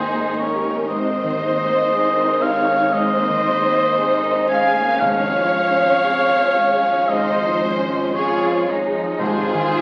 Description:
cinematic; 58 BPM; 4/4; rubato; Ab major; A4 = 440 Hz
dark symphonic violin section; melody; 0.0-9.8 s; C5 to Ab5; -32 LUFS; equal
warm oboe; second line; 0.0-9.8 s; C5 to Ab5; -22 LUFS; equal
warm symphonic violin section; second line; 0.0-9.8 s; Ab4 to F5; -24 LUFS; equal
dark concert grand piano; accompaniment; 0.0-9.8 s; Ab2 to G5; -27 LUFS; equal
warm symphonic viola section; accompaniment; 0.0-9.8 s; C3 to Eb4; -30 LUFS; equal
clear symphonic double bass section; bass; 0.0-9.8 s; Ab1; -37 LUFS; equal
rich studio cello section; bass; 0.0-9.8 s; Bb3 to F4; -30 LUFS; equal
timpani; percussion; 5.0-9.8 s; Ab2; -35 LUFS; equal
wet scoring stage reverb, RT60 1.5 s; very old 78 rpm record, vinyl crackle; -18 LUFS; mono
0.0-9.8 A section
0.0 Eb/Ab; 0.9 Abadd9; 5.0 Db/Ab; 9.2 Ab
| 0.90 1.93 2.96 3.99 | 5.02 6.06 7.11 8.15 | 9.21

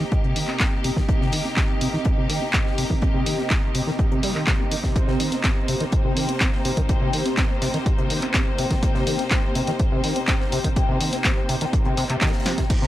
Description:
acid house; 124 BPM; 4/4; straight; C minor; A4 = 440 Hz
bright studio string section; sustained chords; 0.0-12.9 s; C3 to C5; -30 LUFS; left 1 dB; sidechain pumping
deep acid bass; riff; 0.0-12.9 s; C3 to C4; -27 LUFS; equal; wide subtle chorus, cassette tape, tape echo
airy breathy pad; texture; 0.0-12.9 s; C4 to G5; -29 LUFS; equal; chorus, phaser, sidechain pumping
electronic kick drum; drums; 0.1-12.8 s; -22 LUFS; equal
tight funk drum kit; drums; 0.1-12.9 s; hi-hat, snare drum; -40 LUFS; left 2 dB
punchy analog drum machine; drums; 0.4-12.8 s; crash cymbal, handclaps, hi-hat, snare drum; -26 LUFS; equal
little or no reverb; dry, gritty hardware recording, transformer saturation; -19 LUFS; side -14 dB against mid
0.0-12.9 A section
filter sweep on acid bass 0.0-12.9; drum fill 12.5
0.0 Cm7
0.12 0.60 | 1.09 1.57 2.06 2.54 | 3.02 3.51 3.99 4.47 | 4.96 5.44 5.93 6.41 | 6.89 7.38 7.86 8.35 | 8.83 9.31 9.80 10.28 | 10.76 11.25 11.73 12.22 | 12.70

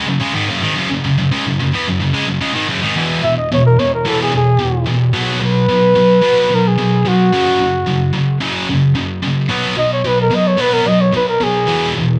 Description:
metal; 110 BPM; 4/4; straight; A4 = 438 Hz
scooped high-gain guitar; riff; 0.0-12.2 s; E2 to Cb4; -17 LUFS; equal; distortion
warm flugelhorn; melody; 3.2-11.9 s; F#4 to E5; -18 LUFS; equal
light reverb, small room ambience; dark, warm production; -15 LUFS; mono
0.0-3.0 A section; 3.0-12.2 B section
flugelhorn solo 3.0-12.2
0.0 Gb5; 3.0 E; 5.1 B5; 7.3 Gb5; 9.5 B5; 11.7 E5
0.22 | 0.77 1.31 1.86 2.41 | 2.95 3.50 4.05 4.59 | 5.14 5.68 6.22 6.77 | 7.31 7.86 8.40 8.95 | 9.49 10.04 10.59 11.13 | 11.68

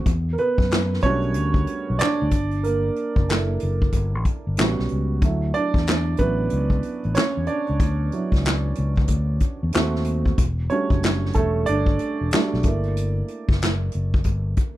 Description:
R&B, neo-soul; 93 BPM; 4/4; swing 62% on 16ths; D major; A4 = 440 Hz
dark upright piano; accompaniment; 0.0-14.8 s; F#3 to D5; -24 LUFS; right 3 dB
fingered electric bass; bass; 0.1-14.5 s; E1 to F#2; -23 LUFS; left 1 dB
unplugged drum kit; drums; 0.1-14.8 s; handclaps, hi-hat, kick drum, snare drum; -22 LUFS; equal
little or no reverb; -19 LUFS; side -15 dB against mid
0.0-14.8 A section
upright piano solo 0.0-14.8
0.1 Em11; 2.3 Gm6; 4.6 A13; 5.2 Dmaj9; 9.7 D#dim7; 10.4 Em11; 12.6 Gm6
| 0.06 0.71 1.35 2.00 | 2.64 3.29 3.93 4.58 | 5.22 5.87 6.51 7.16 | 7.80 8.45 9.09 9.74 | 10.38 11.03 11.67 12.32 | 12.96 13.61 14.25

